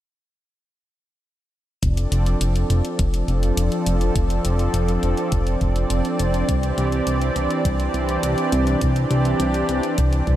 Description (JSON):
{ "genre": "synthwave", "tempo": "103 BPM", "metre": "4/4", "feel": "straight", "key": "unclear", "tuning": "A4 = 440 Hz", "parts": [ { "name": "brassy analog pad", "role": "sustained chords", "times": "1.8-10.4 s", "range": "E3 to D5", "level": "-22 LUFS", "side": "right 1 dB", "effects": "chorus, sidechain pumping" }, { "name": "chorused synth bass", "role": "bass", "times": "1.8-10.4 s", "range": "F1 to C2", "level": "-21 LUFS", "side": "equal", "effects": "tube saturation" }, { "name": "electronic hi-hat", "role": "drums", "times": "1.8-10.4 s", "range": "none", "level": "-34 LUFS", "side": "left 2 dB", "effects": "none" }, { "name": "electronic kick drum", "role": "drums", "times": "1.8-10.4 s", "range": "none", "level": "-23 LUFS", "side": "equal", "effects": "none" } ], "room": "moderate lush hall reverb, RT60 2.9 s", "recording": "dreamy mix soaked in reverb", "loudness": "-18 LUFS", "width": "side -13 dB against mid", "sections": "1.8-10.4 A section", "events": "filter sweep on analog synth bass 1.8-10.4", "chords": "1.8 F6; 6.5 Cadd9", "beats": "| 1.83 2.41 2.99 3.57 | 4.16 4.74 5.32 5.90 | 6.49 7.07 7.65 8.23 | 8.82 9.40 9.98" }